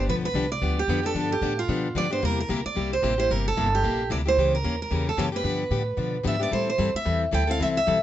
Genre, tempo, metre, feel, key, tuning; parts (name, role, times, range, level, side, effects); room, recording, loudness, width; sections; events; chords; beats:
acoustic string swing (jazz manouche); 223 BPM; 4/4; swing 58% on 8ths; G mixolydian; A4 = 441 Hz
picked steel-string acoustic guitar; melody; 0.0-8.0 s; F4 to G5; -25 LUFS; right 3 dB
picked plugged-in steel-string acoustic guitar; accompaniment; 0.0-8.0 s; C3 to A4; -28 LUFS; left 5 dB
upright bass; bass; 0.0-8.0 s; G1 to B2; -28 LUFS; equal
light reverb; nothing above 8.0 kHz; -22 LUFS; side -12 dB against mid
0.0-8.0 A section
0.0 G7; 2.2 C7; 4.4 C#dim7; 5.4 G7; 6.5 Am7
| 0.08 0.35 0.61 0.88 | 1.15 1.42 1.69 1.96 | 2.22 2.49 2.76 3.03 | 3.30 3.57 3.83 4.10 | 4.37 4.64 4.91 5.18 | 5.45 5.71 5.98 6.25 | 6.52 6.79 7.06 7.33 | 7.60 7.87